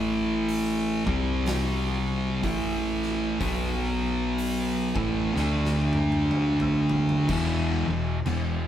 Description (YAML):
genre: stoner and doom metal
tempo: 62 BPM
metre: 4/4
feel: swing 60% on 8ths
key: E minor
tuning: A4 = 440 Hz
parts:
  - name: thick fuzz guitar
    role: riff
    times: 0.0-8.7 s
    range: E2 to D4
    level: -28 LUFS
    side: left 5 dB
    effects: distortion
  - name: thick fuzz guitar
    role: riff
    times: 0.0-8.7 s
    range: E2 to D4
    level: -27 LUFS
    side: right 3 dB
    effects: distortion
  - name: hollow-body short-scale fingered electric bass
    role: bass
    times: 0.0-8.7 s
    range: E1 to D2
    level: -32 LUFS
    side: equal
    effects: overdrive
  - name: oversized low-tuned drum kit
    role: drums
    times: 0.5-8.5 s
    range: crash cymbal, hi-hat, kick drum, snare drum, toms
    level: -35 LUFS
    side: equal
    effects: none
  - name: crunchy overdriven guitar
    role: riff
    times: 7.3-8.7 s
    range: E2 to E3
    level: -34 LUFS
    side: left 2 dB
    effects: none
room: moderate studio reverb, RT60 0.6 s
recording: band playing live in one room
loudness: -23 LUFS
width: side -10 dB against mid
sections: 0.0-7.3 A section; 7.3-8.7 B section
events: drum fill 5.3-7.3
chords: 0.0 A5; 1.0 C5; 2.4 A5; 3.4 B5; 4.9 A5; 5.3 D5; 7.3 E5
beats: 0.49 1.46 2.43 | 3.40 4.38 5.35 6.32 | 7.28 8.25